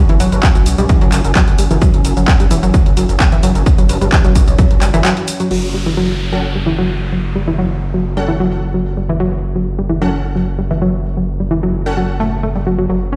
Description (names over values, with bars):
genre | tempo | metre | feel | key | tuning
driving peak-time techno | 130 BPM | 4/4 | straight | F# phrygian | A4 = 443 Hz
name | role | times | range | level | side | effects
analog pluck | riff | 0.0-13.2 s | E3 to C#4 | -20 LUFS | equal | chorus, tube saturation, cassette tape, sidechain pumping, tape echo
overtone-sweeping drone | drone | 0.0-5.6 s | F#3 to C#4 | -28 LUFS | equal | chorus, built-in reverb, sidechain pumping
gritty driven synth bass | bass | 0.1-13.2 s | E1 to B1 | -20 LUFS | equal | sidechain pumping
techno drum kit | drums | 0.1-5.6 s | crash cymbal, handclaps, hi-hat, shaker | -23 LUFS | equal | overdrive, studio reverb
electronic kick drum | drums | 0.4-4.7 s | none | -13 LUFS | equal | overdrive, studio reverb
downlifter | sound effects | 5.5-9.2 s | none | -31 LUFS | equal | none
rave stab | stabs | 6.3-12.0 s | C#4 to F#5 | -26 LUFS | equal | chorus, built-in reverb, sidechain pumping, digital delay
room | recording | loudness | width
light reverb, digital ambience | played on a big sound system in a bare room, stone room reverb | -14 LUFS | mono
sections
0.0-5.5 A section; 5.5-13.2 B section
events
break 5.0-5.5; filter sweep on synth arpeggio sound 5.5-13.2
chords
0.0 F#5; 5.5 F#m